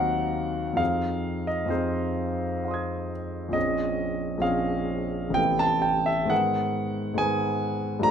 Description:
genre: classical, impressionist solo piano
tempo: 63-70 BPM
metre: 3/4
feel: rubato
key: unclear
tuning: A4 = 440 Hz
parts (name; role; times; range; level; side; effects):
- warm concert grand piano; solo; 0.0-8.1 s; A1 to Ab6; -24 LUFS; equal; none
room: moderate recital hall reverb, RT60 1.5 s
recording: minimal, uncompressed stereo recording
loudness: -24 LUFS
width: side -8 dB against mid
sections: 0.0-8.1 A section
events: none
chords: 0.0 Ebm6; 0.8 Fm7; 3.6 Bbm9; 5.4 Amadd9; 6.3 Abm9

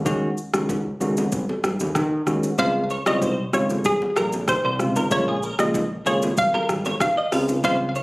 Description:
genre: afrobeats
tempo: 95 BPM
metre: 4/4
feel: straight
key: Db major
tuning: A4 = 435 Hz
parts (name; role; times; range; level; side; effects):
- fat analog bass; bass; 0.0-8.0 s; Ab1 to Eb3; -28 LUFS; equal; none
- bell-like tine electric piano; accompaniment; 0.1-7.9 s; Db3 to Gb4; -23 LUFS; equal; auto-pan
- afro-pop drum kit; drums; 0.1-8.0 s; hi-hat, kick drum, rim click, shaker; -27 LUFS; equal; none
- congas and bongos; percussion; 0.1-7.8 s; none; -30 LUFS; right 1 dB; none
- hollow square pluck; melody; 2.6-7.9 s; Ab4 to F5; -23 LUFS; equal; chorus, ping-pong delay
- direct-recorded clean electric guitar; riff; 2.6-8.0 s; Ab4 to F5; -27 LUFS; right 1 dB; ensemble chorus, ping-pong delay
room: light reverb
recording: recorded on a phone in the room, studio reverb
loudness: -20 LUFS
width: side -22 dB against mid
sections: 0.0-2.6 A section; 2.6-8.0 B section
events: none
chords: 0.0 Ab7sus4; 2.6 Dbmaj7; 5.1 Bbm7; 7.3 Dbmaj7

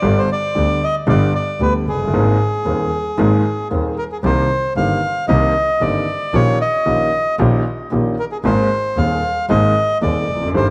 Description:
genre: tango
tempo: 114 BPM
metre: 4/4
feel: rubato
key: unclear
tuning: A4 = 445 Hz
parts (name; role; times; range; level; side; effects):
- bandoneon; melody; 0.0-10.7 s; Ab4 to F5; -21 LUFS; equal; tape echo
- warm concert grand piano; accompaniment; 0.0-10.7 s; Eb1 to Ab4; -21 LUFS; equal; none
- clear double bass; bass; 0.0-10.7 s; F1 to Eb2; -22 LUFS; equal; none
room: moderate echo chamber reverb, RT60 2.0 s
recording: none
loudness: -17 LUFS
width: mono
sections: 0.0-10.7 A section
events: none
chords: 0.0 G; 2.1 Abadd9; 4.2 Cm7; 6.3 Eb7/Bb; 8.4 Abadd9

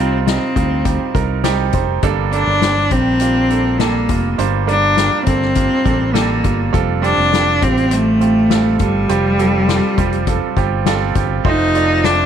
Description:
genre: piano-driven pop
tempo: 102 BPM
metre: 4/4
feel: straight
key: unclear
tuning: A4 = 441 Hz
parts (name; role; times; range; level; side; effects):
- bright cello; melody; 0.0-12.3 s; G3 to Eb4; -16 LUFS; left 1 dB; none
- bright grand piano; accompaniment; 0.0-12.3 s; G2 to Eb5; -20 LUFS; right 12 dB; none
- fingered electric bass; bass; 0.0-12.3 s; F1 to D2; -20 LUFS; left 1 dB; none
- soft-mallet drum kit; drums; 0.3-12.2 s; crash cymbal, hi-hat, kick drum, snare drum; -21 LUFS; left 4 dB; none
- rich studio string section; sustained chords; 11.4-12.3 s; F4 to A5; -26 LUFS; equal; none
room: light reverb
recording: 1960s-style stereo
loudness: -13 LUFS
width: side -8 dB against mid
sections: 0.0-11.5 A section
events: none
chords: 0.0 Cm; 2.0 Gmadd9; 6.7 Fadd9; 11.5 F

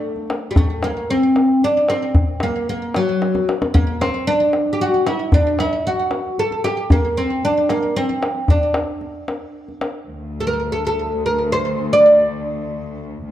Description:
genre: Persian modal ensemble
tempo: 76 BPM (dotted quarters)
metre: 6/8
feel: straight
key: D dastgah homayun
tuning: A4 = 444 Hz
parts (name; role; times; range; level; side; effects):
- oud; melody; 0.0-13.0 s; F#3 to D5; -17 LUFS; equal; slapback echo
- tombak; percussion; 0.2-9.9 s; none; -19 LUFS; left 1 dB; none
- rich studio cello section; drone; 10.1-13.3 s; D2; -26 LUFS; left 3 dB; none
room: moderate recital hall reverb, RT60 1.6 s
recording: dark, warm production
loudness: -16 LUFS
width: side -12 dB against mid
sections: 0.0-10.1 A section; 10.1-13.3 B section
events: drum fill 3.2-3.7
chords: none

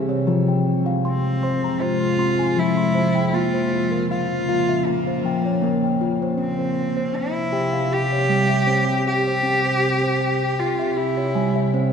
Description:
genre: world meditative, meditative tuned percussion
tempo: 78 BPM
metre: 4/4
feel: straight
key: C phrygian dominant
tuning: A4 = 442 Hz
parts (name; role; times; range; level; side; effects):
- deep dark ambient pad; sustained chords; 0.0-11.9 s; C3 to Bb3; -23 LUFS; right 1 dB; chorus, built-in reverb, shimmer reverb
- steel tongue drum; arpeggios; 0.0-11.9 s; F3 to C6; -23 LUFS; left 2 dB; shimmer reverb, tape echo
- warm cello; melody; 1.1-11.7 s; Bb3 to G4; -23 LUFS; equal; shimmer reverb, tape echo
room: wet recital hall reverb, RT60 1.6 s, small room ambience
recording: dark, warm production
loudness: -18 LUFS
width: side -7 dB against mid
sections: 0.0-11.9 A section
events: none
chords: 0.3 Fm; 3.3 Bbm; 6.4 C

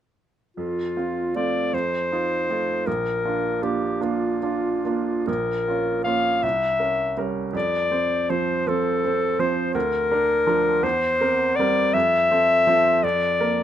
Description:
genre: classical, romantic duo for clarinet and grand piano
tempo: 46-57 BPM (dotted quarters)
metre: 6/8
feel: rubato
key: F major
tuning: A4 = 440 Hz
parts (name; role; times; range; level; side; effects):
- bright clarinet; melody; 0.6-13.6 s; F4 to F5; -21 LUFS; left 3 dB; none
- clear baby grand piano; accompaniment; 0.6-13.6 s; Bb1 to C5; -25 LUFS; right 6 dB; none
room: little or no reverb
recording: close, detailed microphones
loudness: -20 LUFS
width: side -10 dB against mid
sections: 0.6-13.6 A section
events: none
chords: 0.6 F; 1.7 F7; 2.9 Bb; 5.3 Bbm; 6.4 C7b9; 7.5 F; 9.7 Bb/D; 10.8 C7/E; 11.9 F; 13.0 Bb/F

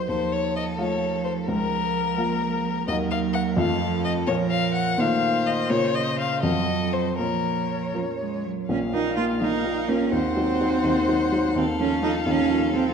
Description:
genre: quick classical-period movement for piano quartet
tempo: 84 BPM (dotted quarters)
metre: 6/8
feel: rubato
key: Bb minor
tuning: A4 = 440 Hz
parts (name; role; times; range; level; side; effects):
- rich violin; melody; 0.0-12.9 s; Bb4 to Gb5; -27 LUFS; left 6 dB; none
- clear violin; second line; 0.0-12.9 s; A4 to Db5; -33 LUFS; left 2 dB; none
- rich cello; second line; 0.0-12.9 s; Db3 to F4; -26 LUFS; right 7 dB; none
- warm baby grand piano; accompaniment; 0.0-12.9 s; Bb1 to F5; -25 LUFS; left 1 dB; none
room: wet recital hall reverb, RT60 1.4 s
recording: dark, warm production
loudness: -21 LUFS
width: side -6 dB against mid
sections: 0.0-8.7 A section; 8.7-12.9 A section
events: none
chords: 0.1 F7/Eb; 1.5 Bbm/Db; 2.9 Ebm; 3.6 F7; 4.3 Bbm; 5.0 F7/Bb; 5.7 Bbm; 6.4 F7b9; 7.2 Bbm; 8.7 Bb5; 10.1 Cdim/Eb; 11.6 F7/Eb

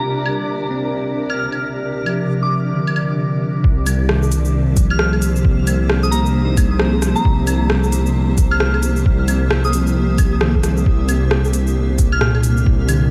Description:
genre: future garage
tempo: 133 BPM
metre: 4/4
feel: swing 61% on 16ths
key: unclear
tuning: A4 = 441 Hz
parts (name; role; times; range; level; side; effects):
- soft synth bell; melody; 0.0-12.3 s; Bb5 to F6; -29 LUFS; equal; chorus, phaser, tape echo
- bell-like tine electric piano; accompaniment; 0.0-13.1 s; Bb2 to Eb4; -24 LUFS; equal; sidechain pumping, analog delay
- granular cloud pad; sustained chords; 0.0-13.1 s; C3 to C5; -26 LUFS; equal; built-in reverb, sidechain pumping
- backwards swelling texture; texture; 0.0-3.2 s; D5; -35 LUFS; equal; built-in reverb
- organic electronic drum kit; drums; 0.3-13.0 s; claves, hi-hat, rim click, shaker; -26 LUFS; equal; overdrive
- dark detuned saw bass; bass; 3.6-13.1 s; C2; -20 LUFS; equal; sidechain pumping
- electronic kick drum; drums; 3.6-12.8 s; none; -17 LUFS; equal; none
room: moderate huge ambient reverb, RT60 8.0 s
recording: dreamy mix soaked in reverb, vinyl crackle, low-pass filter, faint mains hum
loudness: -17 LUFS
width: mono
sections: 0.0-3.6 A section; 3.6-13.1 B section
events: filter sweep 0.0-3.6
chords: 0.0 Gm/C; 3.6 Cm7; 10.9 Gm/C

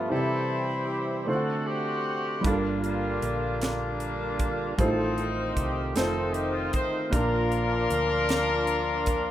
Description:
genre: slow gospel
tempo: 51 BPM (dotted quarters)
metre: 6/8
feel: straight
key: F major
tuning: A4 = 440 Hz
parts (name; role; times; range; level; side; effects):
- warm horn section; melody; 0.0-9.3 s; Bb3 to C5; -28 LUFS; left 2 dB; plate reverb
- warm concert grand piano; accompaniment; 0.0-9.3 s; G2 to F#5; -30 LUFS; right 1 dB; none
- overdriven tonewheel organ; sustained chords; 0.0-9.3 s; G2 to F#5; -33 LUFS; right 3 dB; slow rotary speaker, chorus vibrato
- hollow-body short-scale fingered electric bass; bass; 2.4-9.3 s; F1 to D2; -33 LUFS; equal; none
- crisp fusion drum kit; drums; 2.4-9.2 s; hi-hat, kick drum, snare drum; -30 LUFS; right 1 dB; none
room: light reverb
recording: rough home demo mix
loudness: -24 LUFS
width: side -12 dB against mid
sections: 0.0-9.3 A section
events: none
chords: 0.1 C; 1.3 D7; 2.4 Gm7; 4.8 F7/A; 6.0 F7; 7.1 Bb

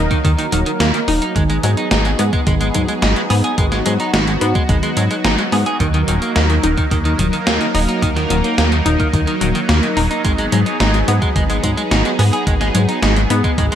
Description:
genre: synthwave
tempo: 108 BPM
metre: 4/4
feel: straight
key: unclear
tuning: A4 = 440 Hz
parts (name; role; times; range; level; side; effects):
- warm analog pad; sustained chords; 0.0-13.8 s; Gb3 to Bb4; -21 LUFS; right 1 dB; chorus, sidechain pumping
- analog pluck; arpeggios; 0.0-13.8 s; Eb3 to Eb4; -22 LUFS; left 3 dB; chorus, ping-pong delay
- chorused synth bass; bass; 0.0-13.7 s; Eb1 to Ab2; -17 LUFS; equal; tube saturation, sidechain pumping
- clean electric guitar; riff; 0.1-13.8 s; Eb3 to Ab4; -22 LUFS; right 2 dB; analog chorus, ping-pong delay
- electronic kick drum; drums; 0.1-13.7 s; none; -18 LUFS; equal; none
- gated 80s digital drum machine; drums; 0.1-13.8 s; hi-hat, snare drum; -21 LUFS; equal; gated reverb, gated reverb snare
room: moderate plate reverb, RT60 2.1 s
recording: bright 1980s-style digital production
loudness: -14 LUFS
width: side -10 dB against mid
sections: 0.0-13.8 A section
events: none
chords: 0.0 Ebm; 1.4 Abm7; 5.8 Ebm; 10.2 Abm7

